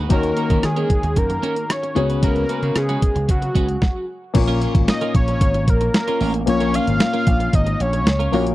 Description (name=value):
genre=1980s-style pop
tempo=113 BPM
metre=4/4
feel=straight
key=unclear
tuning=A4 = 438 Hz
part: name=warm baby grand piano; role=accompaniment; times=0.0-8.5 s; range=A#2 to C#5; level=-24 LUFS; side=left 5 dB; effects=none
part: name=twelve-string electric guitar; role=riff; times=0.0-8.5 s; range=G#3 to B4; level=-27 LUFS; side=right 4 dB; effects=wide subtle chorus
part: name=vintage slap bass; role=bass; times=0.0-8.5 s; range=G#1 to D#3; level=-22 LUFS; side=equal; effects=none
part: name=fat analog lead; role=melody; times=0.1-8.3 s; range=F#4 to E#5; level=-23 LUFS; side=equal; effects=tape echo
part: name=clean 12-bit digital drum machine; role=drums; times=0.1-8.5 s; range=crash cymbal, hi-hat, kick drum, rim click, snare drum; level=-18 LUFS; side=equal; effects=none
room=little or no reverb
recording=dry, close 1970s-style studio recording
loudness=-16 LUFS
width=side -16 dB against mid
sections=0.0-4.3 A section; 4.3-8.5 B section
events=stop 3.8-4.3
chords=0.1 D#m7; 2.0 C#7sus4; 4.3 A#m